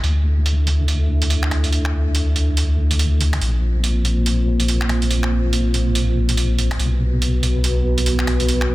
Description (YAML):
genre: deep dubstep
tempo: 142 BPM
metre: 4/4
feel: swing 59% on 16ths, half-time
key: unclear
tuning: A4 = 440 Hz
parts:
  - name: dark analog pad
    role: sustained chords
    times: 0.0-8.7 s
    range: Bb3 to E5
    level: -24 LUFS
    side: right 1 dB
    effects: chorus
  - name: deep soft wobble bass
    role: bass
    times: 0.0-8.7 s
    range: Bb1 to D2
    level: -17 LUFS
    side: equal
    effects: chorus
  - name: trip hop sampler-style drum kit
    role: drums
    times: 0.0-8.7 s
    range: finger snaps, hi-hat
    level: -25 LUFS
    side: right 3 dB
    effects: soft clipping on snare, low-pass filter on snare, low-pass filter on hats
room: little or no reverb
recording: dense, heavily limited modern master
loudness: -16 LUFS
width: side -18 dB against mid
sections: 0.0-8.7 A section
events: filter sweep on analog synth pad 0.0-8.7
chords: 0.0 D5; 3.4 Bb5; 6.8 B5